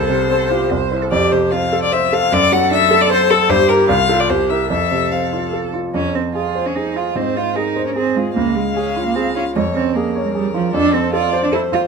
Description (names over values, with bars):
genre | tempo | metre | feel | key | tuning
quick classical-period movement for piano trio | 150 BPM | 3/4 | straight | F major, F minor from 5.9 s | A4 = 440 Hz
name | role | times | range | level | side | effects
rich violin | melody | 0.0-11.9 s | Ab4 to F#5 | -19 LUFS | left 8 dB | none
rich cello | second line | 0.0-11.8 s | F3 to C5 | -20 LUFS | right 6 dB | none
clear baby grand piano | accompaniment | 0.0-11.9 s | C2 to Db5 | -18 LUFS | right 1 dB | none
room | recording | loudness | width
moderate stone room reverb, RT60 1.1 s | minimal, uncompressed stereo recording | -14 LUFS | side -5 dB against mid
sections
0.0-5.9 A section; 5.9-11.9 B section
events
none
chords
0.0 F/C; 0.7 C; 1.1 F; 2.3 D7/F#; 3.5 Gm; 3.9 F/C; 4.3 C7; 4.7 F; 5.9 Fm; 7.2 Fm/Ab; 8.4 Db; 9.6 Db/F; 10.7 F